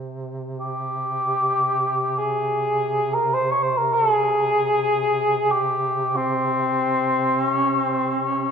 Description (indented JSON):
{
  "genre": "caucasian folk, Caucasian lament",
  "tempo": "free time",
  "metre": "none",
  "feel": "none",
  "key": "unclear",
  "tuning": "A4 = 440 Hz",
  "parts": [
    { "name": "warm duduk", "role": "drone", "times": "0.0-8.5 s", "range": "C3", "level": "-30 LUFS", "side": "right 2 dB", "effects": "none" },
    { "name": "dark cor anglais", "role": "melody", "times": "0.6-8.5 s", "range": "C4 to Db5", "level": "-20 LUFS", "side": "equal", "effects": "none" }
  ],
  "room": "wet church reverb, RT60 2.8 s",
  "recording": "minimal, uncompressed stereo recording",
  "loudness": "-19 LUFS",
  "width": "side -7 dB against mid",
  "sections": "0.0-8.5 A section",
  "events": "none",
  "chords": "none",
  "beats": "free time"
}